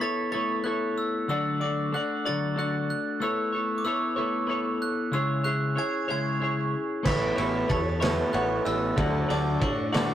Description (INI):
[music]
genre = indie rock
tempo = 62 BPM (dotted quarters)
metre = 6/8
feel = straight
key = A major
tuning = A4 = 439 Hz
[part]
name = glockenspiel with brass mallets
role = melody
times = 0.0-10.1 s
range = C#6 to B6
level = -32 LUFS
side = right 2 dB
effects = none
[part]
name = twelve-string electric guitar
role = riff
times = 0.0-10.1 s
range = C#3 to D5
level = -27 LUFS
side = left 1 dB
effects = none
[part]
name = glassy synth bell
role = second line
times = 5.8-10.1 s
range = C#5 to B5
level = -38 LUFS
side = right 2 dB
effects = chorus, tremolo
[part]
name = electric guitar through a small old amp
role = riff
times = 7.0-10.1 s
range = D3 to F#4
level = -28 LUFS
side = right 2 dB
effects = none
[part]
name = modern bright picked electric bass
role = bass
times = 7.1-10.1 s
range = A1 to A2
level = -32 LUFS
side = equal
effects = none
[part]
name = vintage drum kit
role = drums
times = 7.1-10.1 s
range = crash cymbal, kick drum, ride cymbal, snare drum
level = -29 LUFS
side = equal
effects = none
[sound]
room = moderate booth ambience, RT60 0.2 s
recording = rough rehearsal-room recording, warm saturation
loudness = -24 LUFS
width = side -11 dB against mid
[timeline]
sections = 0.0-10.1 A section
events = none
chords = 0.0 Aadd9; 1.3 D; 3.2 Aadd9; 5.1 C#m; 7.1 Aadd9; 9.0 D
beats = 0.33 | 1.30 2.26 | 3.22 4.18 | 5.14 6.10 | 7.06 8.02 | 8.98 9.94